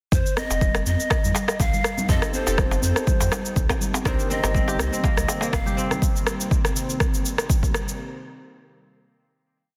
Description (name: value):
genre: afro house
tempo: 122 BPM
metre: 4/4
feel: swing 54% on 16ths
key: C dorian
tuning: A4 = 439 Hz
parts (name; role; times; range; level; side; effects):
- breathy large pan pipes; melody; 0.1-6.0 s; C5 to F5; -32 LUFS; equal; tape echo
- warm sub bass; bass; 0.1-5.6 s; F1 to F2; -28 LUFS; equal; sidechain pumping
- electronic cabasa and rim click; drums; 0.1-8.0 s; none; -30 LUFS; equal; soft clipping on snare
- electronic kick drum; drums; 0.1-7.7 s; none; -25 LUFS; equal; overdrive
- congas; percussion; 0.4-6.0 s; none; -34 LUFS; equal; none
- darbuka; percussion; 0.5-5.6 s; none; -32 LUFS; equal; none
- warm analog keys; stabs; 2.1-6.0 s; C4 to Bb4; -35 LUFS; equal; chorus, sidechain pumping
- warm analog pad; sustained chords; 4.1-8.0 s; C3 to C5; -35 LUFS; equal; chorus, sidechain pumping
- kora; arpeggios; 4.1-7.6 s; Bb3 to G4; -34 LUFS; equal; sidechain pumping, tape echo
room: light reverb, small room ambience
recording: dense, heavily limited modern master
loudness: -23 LUFS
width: mono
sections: 0.1-8.0 groove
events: none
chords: 0.1 F7; 4.1 Cm7